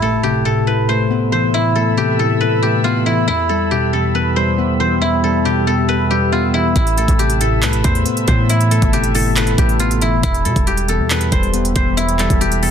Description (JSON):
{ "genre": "hip hop, trap", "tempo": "138 BPM", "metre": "4/4", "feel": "half-time", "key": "A minor", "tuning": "A4 = 440 Hz", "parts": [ { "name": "guzheng", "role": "melody", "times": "0.0-12.7 s", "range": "E4 to C5", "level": "-18 LUFS", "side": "left 1 dB", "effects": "low-pass filter, digital delay" }, { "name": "mellow tine electric piano", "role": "accompaniment", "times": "0.0-12.7 s", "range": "E2 to B3", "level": "-18 LUFS", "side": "left 1 dB", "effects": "auto-pan, low-pass filter" }, { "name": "deep dark ambient pad", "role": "sustained chords", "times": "0.7-12.7 s", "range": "G4 to E6", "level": "-25 LUFS", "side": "equal", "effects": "chorus, built-in reverb" }, { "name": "impact", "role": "sound effects", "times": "0.0-1.5 s", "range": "none", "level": "-33 LUFS", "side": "right 1 dB", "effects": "none" }, { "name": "hard-hitting 808-style bass", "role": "bass", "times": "6.8-12.7 s", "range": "E1 to B2", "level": "-19 LUFS", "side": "equal", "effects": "none" }, { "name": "trap drum kit", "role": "drums", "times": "6.8-12.7 s", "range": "handclaps, hi-hat, kick drum", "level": "-18 LUFS", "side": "right 1 dB", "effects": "overdrive" } ], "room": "light reverb", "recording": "dense, heavily limited modern master", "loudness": "-13 LUFS", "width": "side -8 dB against mid", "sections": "0.0-12.7 A section", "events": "impact 0.0-1.5", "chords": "0.0 Amadd9; 3.3 Em; 6.8 Amadd9; 10.2 Em" }